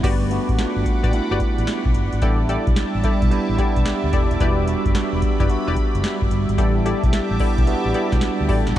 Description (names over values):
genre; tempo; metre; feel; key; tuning
R&B, new jack swing; 110 BPM; 4/4; swing 66% on 16ths; unclear; A4 = 441 Hz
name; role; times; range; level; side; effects
bell-like tine electric piano; accompaniment; 0.0-8.8 s; G3 to A5; -23 LUFS; right 2 dB; lush chorus
sweeping resonant pad; sustained chords; 0.0-8.8 s; G3 to D6; -28 LUFS; equal; chorus
funky polysynth comp; stabs; 0.0-8.8 s; E4 to D5; -28 LUFS; left 3 dB; chorus, tremolo, analog delay
vintage muted fingered electric bass; bass; 0.0-8.8 s; Eb1 to D2; -23 LUFS; equal; none
booming analog drum machine; drums; 0.0-8.8 s; crash cymbal, hi-hat, kick drum, snare drum, tambourine; -21 LUFS; equal; overdrive
room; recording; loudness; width
moderate huge ambient reverb, RT60 7.4 s; dreamy mix soaked in reverb; -17 LUFS; side -12 dB against mid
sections
0.0-8.8 A section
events
tine electric piano fill 2.8-4.4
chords
0.0 Gmaj7; 2.2 A7sus4; 4.4 Em7; 6.6 A7sus4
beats
| 0.04 0.58 1.13 1.68 | 2.22 2.77 3.31 3.86 | 4.40 4.95 5.49 6.04 | 6.58 7.13 7.68 8.22 | 8.77